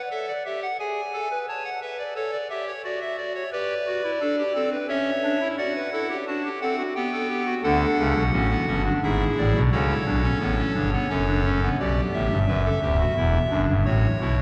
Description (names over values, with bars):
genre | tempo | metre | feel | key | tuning
classical, baroque-style 4-part fugue for pipe organ | 88 BPM | 3/4 | straight | G major | A4 = 439 Hz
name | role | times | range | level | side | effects
pipe organ, clarinet reed | solo | 0.0-14.4 s | D1 to A5 | -24 LUFS | equal | none
room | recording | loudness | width
wet cathedral reverb, RT60 5.6 s | dark, warm production | -24 LUFS | mono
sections
0.0-11.8 A section; 11.8-14.4 B section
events
none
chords
0.0 D; 0.8 Abm; 1.5 A7; 2.8 D/F#; 3.5 G; 4.9 C#m; 5.6 D7; 7.0 G/B; 7.6 D; 9.0 E7/G#; 9.7 A7; 11.1 D/F#; 11.8 Gmaj7; 13.2 Em9; 13.9 F#m7/A